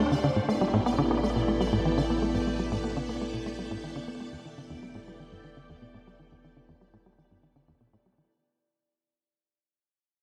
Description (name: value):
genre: ambient, sequencer-driven space music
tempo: 121 BPM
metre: 4/4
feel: straight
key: unclear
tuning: A4 = 441 Hz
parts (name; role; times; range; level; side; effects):
- string machine, full ensemble; sustained chords; 0.0-8.3 s; A3 to G5; -34 LUFS; equal; ensemble chorus
- tight sequencer bass; riff; 0.0-8.2 s; E2 to B3; -32 LUFS; equal; subtle chorus, vintage 12-bit sampler grit, delay
- warm sub bass; bass; 0.0-8.3 s; E1 to D2; -41 LUFS; equal; none
- pulsing gated texture; texture; 0.0-8.3 s; D5; -41 LUFS; equal; chorus, built-in reverb
room: wet spring reverb, RT60 2.9 s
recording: echo-heavy mix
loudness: -28 LUFS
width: mono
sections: 0.0-8.3 A section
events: fade-out 0.0-8.3; filter sweep on analog synth bass 0.0-8.3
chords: 0.4 Asus2; 4.3 Em7